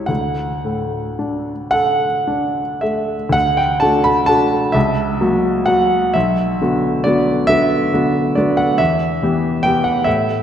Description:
classical, romantic nocturne for solo piano; 34-48 BPM (dotted quarters); 12/8; rubato; D major; A4 = 435 Hz
warm grand piano; solo; 0.0-10.4 s; B1 to B5; -14 LUFS; equal
wet concert hall reverb, RT60 2.0 s; -14 LUFS; side -9 dB against mid
0.0-3.3 A section; 3.3-10.4 A section
0.1 D; 4.7 F#7/C#; 6.2 Bm; 8.8 Em

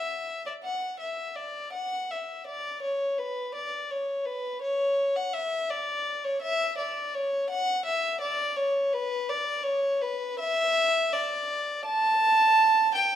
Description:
classical, baroque-style suite movement for unaccompanied violin; 83 BPM; 4/4; rubato; A4 = 440 Hz
warm violin; solo; 0.0-13.2 s; B4 to A5; -25 LUFS; equal
moderate recital hall reverb, RT60 1.3 s; -25 LUFS; side -10 dB against mid
0.0-13.2 A section

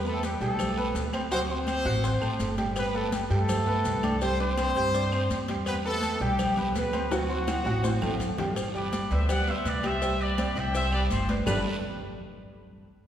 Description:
latin, salsa; 166 BPM; 4/4; straight; G major; A4 = 440 Hz
warm horn section; melody; 0.0-8.4 s; F#3 to C5; -30 LUFS; equal
clear upright piano; accompaniment; 0.0-11.6 s; F#3 to G6; -32 LUFS; right 1 dB
upright bass; bass; 0.0-11.6 s; G1 to G2; -30 LUFS; equal
congas; percussion; 0.1-11.6 s; -36 LUFS; left 1 dB
maracas; percussion; 0.1-11.6 s; -46 LUFS; left 5 dB
agogo bells and timbales; percussion; 0.2-11.5 s; -37 LUFS; right 2 dB
cowbell and bongos; percussion; 0.2-11.6 s; -38 LUFS; left 4 dB
guiro; percussion; 0.2-11.6 s; -44 LUFS; right 3 dB
claves; percussion; 0.6-11.6 s; -45 LUFS; equal
bright trumpet section; melody; 8.8-11.6 s; G4 to G5; -31 LUFS; left 1 dB
wet concert hall reverb, RT60 2.3 s; recorded in a church or concert hall; -25 LUFS; side -10 dB against mid
0.0-8.6 A section; 8.6-11.5 B section; 11.5-12.9 C section
drum fill 7.1-8.6
0.0 Em7; 1.3 D7; 2.8 Gadd9; 4.2 Cadd9; 5.7 Em7; 7.1 D7; 8.6 G; 11.5 Gadd9

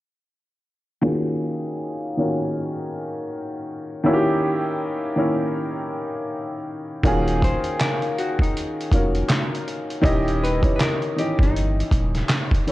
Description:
lo-fi hip hop; 80 BPM; 4/4; swing 61% on 16ths; A4 = 440 Hz
warm upright piano; accompaniment; 1.0-12.7 s; Eb3 to Eb5; -23 LUFS; equal; low-pass filter
soft dub sub bass; bass; 7.0-12.2 s; Eb1 to G1; -24 LUFS; equal
trip hop sampler-style drum kit; drums; 7.0-12.7 s; handclaps, hi-hat, kick drum, snare drum; -22 LUFS; equal
vintage hollow-body jazz guitar; melody; 7.4-12.6 s; Eb4 to C5; -28 LUFS; left 3 dB
light reverb, digital ambience; cassette tape; -20 LUFS; side -17 dB against mid
1.0-7.0 A section; 7.0-12.7 B section
filter sweep on upright piano 1.0-7.0
1.0 Ebm11; 4.0 Eb7b9; 7.0 Ebm11; 10.0 Eb7b9

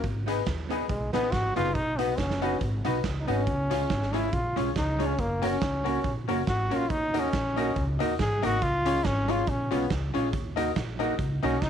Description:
ska; 140 BPM; 4/4; swing 56% on 8ths; A4 = 440 Hz
bright trombone; melody; 0.0-11.7 s; G#3 to G#4; -29 LUFS; equal
upright bass; bass; 0.0-11.7 s; F#1 to G#2; -31 LUFS; equal
raw garage drum kit; drums; 0.0-11.7 s; hi-hat, kick drum, snare drum; -33 LUFS; right 3 dB
vintage hollow-body jazz guitar; accompaniment; 0.3-11.6 s; G#3 to G#4; -33 LUFS; right 12 dB
bright upright piano; stabs; 0.3-11.6 s; B3 to D#5; -32 LUFS; left 12 dB
light reverb, small room ambience; 1960s-style stereo with parts hard left and right; -25 LUFS; side -8 dB against mid
0.0-11.7 A section
trombone solo 0.0-11.7
0.0 G#m; 1.8 B; 3.5 C#; 5.2 F#; 6.9 D#m; 8.6 C#; 10.3 D#m

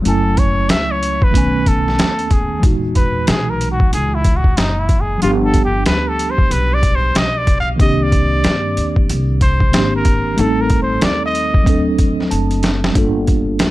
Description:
hip hop, jazz-hop; 93 BPM; 4/4; swing 63% on 16ths; A4 = 441 Hz
mellow tine electric piano; accompaniment; 0.0-13.7 s; A#2 to A5; -19 LUFS; right 1 dB; medium stereo tremolo
upright bass; bass; 0.0-13.7 s; F#1 to G2; -20 LUFS; equal
trumpet with straight mute; melody; 0.1-11.8 s; D#4 to F5; -20 LUFS; equal; tape echo
trip hop sampler-style drum kit; drums; 0.1-13.7 s; hi-hat, kick drum, snare drum; -15 LUFS; equal
light reverb; dark, warm production; -13 LUFS; side -17 dB against mid
0.0-13.0 A section
muted trumpet solo 0.0-13.0; tine electric piano fill 12.0-13.0; drum fill 12.3-13.0
0.1 F#m9; 1.3 B13; 2.6 Emaj9#11; 5.2 G7; 7.8 Cm9; 10.4 Am7b5; 11.7 D7; 13.0 Gm9

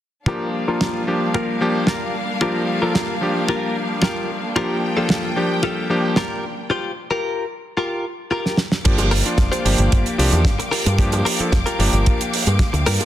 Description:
nu-disco, nu disco; 112 BPM; 4/4; straight; G minor; A4 = 440 Hz
clear electric grand piano; accompaniment; 0.3-13.1 s; F3 to A4; -22 LUFS; left 1 dB; slapback echo
clear symphonic string section; sustained chords; 0.3-13.1 s; G3 to D6; -27 LUFS; left 1 dB; sidechain pumping
direct-recorded clean electric guitar; riff; 0.3-13.1 s; F4 to C5; -25 LUFS; left 2 dB; lush chorus, low-pass filter
kick drum; drums; 0.3-12.7 s; -19 LUFS; equal; high-pass filter on kick, studio reverb, high-pass filter on snare, high-pass filter on room
damped 70s drum kit; drums; 0.8-13.1 s; crash cymbal, hi-hat, snare drum; -23 LUFS; right 2 dB; studio reverb
fingered electric bass with an envelope filter; bass; 8.9-13.0 s; F1 to G2; -19 LUFS; equal; sidechain pumping
cowbell; percussion; 9.0-13.1 s; -31 LUFS; right 2 dB
moderate echo chamber reverb, RT60 1.9 s, studio reverb; dense, heavily limited modern master; -17 LUFS; side -12 dB against mid
0.3-8.8 A section; 8.8-13.1 B section
filter sweep on clean electric guitar 0.3-8.8; break 6.7-8.8; drum fill 8.4-8.8
0.3 Gm7

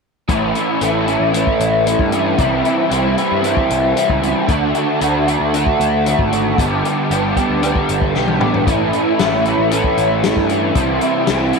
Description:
psychedelic rock; 115 BPM; 4/4; straight; A4 = 440 Hz
crunchy overdriven guitar; riff; 0.3-11.6 s; G2 to G4; -15 LUFS; equal; flanger
fuzz picked electric bass; bass; 0.3-11.5 s; G1 to G2; -22 LUFS; equal; overdrive
vintage drum kit; drums; 0.3-11.6 s; hi-hat, kick drum, snare drum, toms; -21 LUFS; left 3 dB
light reverb, small room ambience; 1960s-style stereo; -14 LUFS; side -4 dB against mid
0.3-11.6 A section
drum fill 8.1-8.7
0.3 A; 2.4 C; 4.5 D; 6.6 G; 8.7 A; 10.8 C

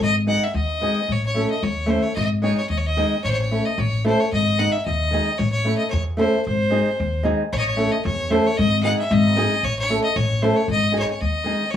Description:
balkan folk, Balkan wedding band; 112 BPM; 2/4; straight; A4 = 440 Hz
bright fiddle; melody; 0.0-11.8 s; B#4 to F#5; -23 LUFS; left 1 dB
upright bass; bass; 0.0-11.8 s; G#1 to E2; -22 LUFS; left 2 dB
flamenco guitar; accompaniment; 0.3-11.6 s; G#3 to A4; -22 LUFS; equal
light reverb; small room ambience; -18 LUFS; side -9 dB against mid
0.0-7.5 A section; 7.5-11.8 A section
0.0 G#; 1.1 A; 2.2 G#; 3.2 A; 4.3 G#; 5.4 A; 6.5 G#; 7.5 A; 8.6 G#; 9.6 A; 10.7 G#

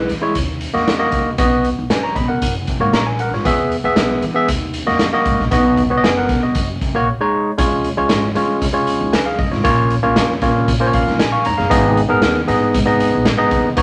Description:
uptempo 1960s-style soul; 116 BPM; 4/4; straight; Db mixolydian; A4 = 440 Hz
barky tine electric piano; accompaniment; 0.0-13.8 s; G#3 to Db6; -19 LUFS; equal
upright bass; bass; 0.0-13.8 s; F1 to E3; -24 LUFS; equal
raw garage drum kit; drums; 0.1-13.8 s; hi-hat, kick drum, snare drum; -22 LUFS; equal
light reverb; -16 LUFS; mono
0.0-7.6 A section; 7.6-13.8 B section
tine electric piano fill 10.7-11.7
0.4 Ebm; 1.4 Cb; 2.4 Gb; 3.5 E; 4.5 Ebm; 5.5 Cb; 6.6 Gb; 7.1 Absus4; 7.6 Db; 9.7 Bbm; 11.7 Abm

